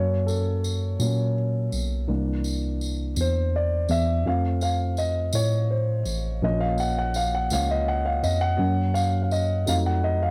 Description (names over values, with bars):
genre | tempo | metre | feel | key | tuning
slow gospel | 55 BPM (dotted quarters) | 6/8 | straight | Bb harmonic minor | A4 = 444 Hz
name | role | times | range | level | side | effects
dark grand piano | accompaniment | 0.0-10.3 s | E3 to Gb5 | -28 LUFS | equal | none
tine electric piano | bass | 0.0-10.3 s | A1 to Bb2 | -27 LUFS | equal | none
tambourine | percussion | 0.3-10.0 s | none | -38 LUFS | equal | none
room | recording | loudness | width
light reverb | home recording on cassette | -25 LUFS | mono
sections
0.0-10.3 A section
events
grand piano solo 0.0-10.3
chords
0.0 Gb; 2.1 C7; 4.3 F; 6.4 Bbm; 8.6 Gb; 9.7 F7b9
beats
1.00 | 2.09 3.18 | 4.26 5.35 | 6.43 7.52 | 8.61 9.69